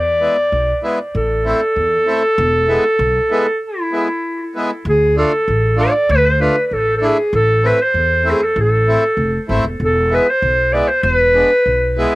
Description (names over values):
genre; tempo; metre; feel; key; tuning
klezmer; 97 BPM; 2/4; straight; E phrygian dominant; A4 = 441 Hz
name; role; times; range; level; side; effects
warm clarinet; melody; 0.0-12.0 s; E4 to D5; -14 LUFS; equal; cassette tape, analog delay
upright bass; bass; 0.0-12.0 s; E1 to E2; -19 LUFS; equal; none
accordion; accompaniment; 0.2-12.1 s; G#3 to F4; -18 LUFS; equal; cassette tape
room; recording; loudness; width
moderate booth ambience, RT60 0.2 s; home recording on cassette; -13 LUFS; side -19 dB against mid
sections
0.0-4.9 A section; 4.9-12.2 B section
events
break 3.6-4.9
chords
0.0 E; 1.1 Am; 2.4 E; 4.9 Dm; 7.3 Am; 9.8 E